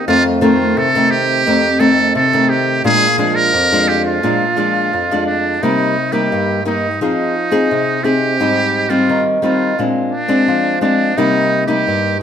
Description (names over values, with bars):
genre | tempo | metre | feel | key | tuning
samba | 86 BPM | 4/4 | straight | C minor from 5.6 s | A4 = 442 Hz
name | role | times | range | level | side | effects
trumpet with metal mute | melody | 0.0-12.2 s | D4 to Bb4 | -16 LUFS | right 3 dB | none
nylon-string guitar | accompaniment | 0.0-12.2 s | F2 to Ab4 | -14 LUFS | left 1 dB | none
room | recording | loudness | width
wet stone room reverb, RT60 1.0 s | band playing live in one room | -12 LUFS | side -8 dB against mid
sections
0.0-5.6 A section; 5.6-12.2 B section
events
none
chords
0.1 F7; 2.9 Bb7; 5.6 Cm7; 7.0 Fm7; 8.4 Abmaj7; 9.8 Bb9; 11.2 Cm7